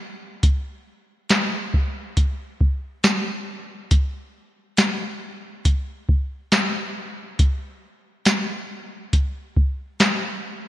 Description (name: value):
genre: dream pop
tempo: 69 BPM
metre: 4/4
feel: straight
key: none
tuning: none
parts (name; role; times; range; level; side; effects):
- soft vintage rhythm box; drums; 0.4-10.2 s; hi-hat, kick drum, snare drum, tambourine; -19 LUFS; equal; gated reverb
room: light reverb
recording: bright 1980s-style digital production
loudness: -20 LUFS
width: side -14 dB against mid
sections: 0.0-10.7 A section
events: none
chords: none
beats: | 0.43 1.30 2.17 3.04 | 3.91 4.78 5.65 6.52 | 7.39 8.26 9.13 10.00